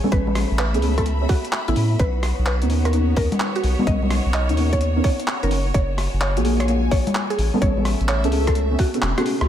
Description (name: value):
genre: UK garage, two-step garage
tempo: 128 BPM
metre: 4/4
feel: swing 66% on 16ths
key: unclear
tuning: A4 = 441 Hz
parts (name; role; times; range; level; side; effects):
- deep mellow chord stab; stabs; 0.0-9.5 s; A#3 to C#5; -25 LUFS; equal; chorus, phaser, tape echo
- breakbeat sampler-style drum kit; drums; 0.0-9.5 s; congas, handclaps, hi-hat, rim click; -26 LUFS; left 1 dB; none
- bright studio string section; texture; 0.0-9.5 s; A3 to B5; -31 LUFS; equal; sidechain pumping
- mallet-like synth pluck; melody; 0.1-9.4 s; E4 to D#5; -27 LUFS; equal; chorus, ping-pong delay
- soft dub sub bass; bass; 0.1-9.5 s; E1 to A2; -21 LUFS; equal; none
- electronic kick drum; drums; 0.1-8.9 s; none; -20 LUFS; equal; none
room: moderate plate reverb, RT60 1.5 s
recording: dreamy mix soaked in reverb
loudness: -18 LUFS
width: side -10 dB against mid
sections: 0.0-9.5 A section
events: drum fill 9.0-9.5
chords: 0.0 Amaj9; 2.0 Bmaj9; 5.7 F#maj9; 7.4 Amaj9